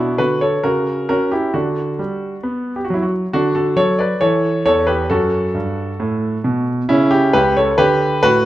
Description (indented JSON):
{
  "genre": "classical-period piano sonatina",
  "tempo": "134 BPM",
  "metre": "4/4",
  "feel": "rubato",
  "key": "unclear",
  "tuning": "A4 = 440 Hz",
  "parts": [
    { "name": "clear concert grand piano", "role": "solo", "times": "0.0-8.5 s", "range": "C#2 to D5", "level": "-15 LUFS", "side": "equal", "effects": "none" }
  ],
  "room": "moderate recital hall reverb, RT60 1.6 s",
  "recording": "none",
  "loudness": "-15 LUFS",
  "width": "side -14 dB against mid",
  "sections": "0.0-8.5 A section",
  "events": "none",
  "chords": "0.0 Bm; 0.6 F#7/C#; 1.5 Bm/D; 3.3 D; 4.2 A7/E; 5.1 F#madd11; 6.9 A7/C#; 7.8 D"
}